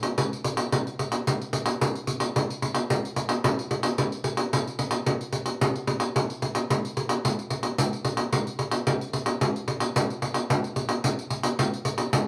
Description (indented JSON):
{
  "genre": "samba",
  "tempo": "110 BPM",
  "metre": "4/4",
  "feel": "straight",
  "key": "none",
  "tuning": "none",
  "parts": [
    { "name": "pandeiro", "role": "percussion", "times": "0.0-12.3 s", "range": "none", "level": "-27 LUFS", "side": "equal", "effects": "none" }
  ],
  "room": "light reverb",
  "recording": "close, detailed microphones",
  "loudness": "-27 LUFS",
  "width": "mono",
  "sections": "0.0-8.3 A section; 8.3-12.3 B section",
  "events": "none",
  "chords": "none",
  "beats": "0.18 0.72 1.27 | 1.81 2.35 2.90 3.44 | 3.98 4.53 5.07 5.61 | 6.16 6.70 7.24 7.79 | 8.33 8.87 9.42 9.96 | 10.50 11.05 11.59 12.13"
}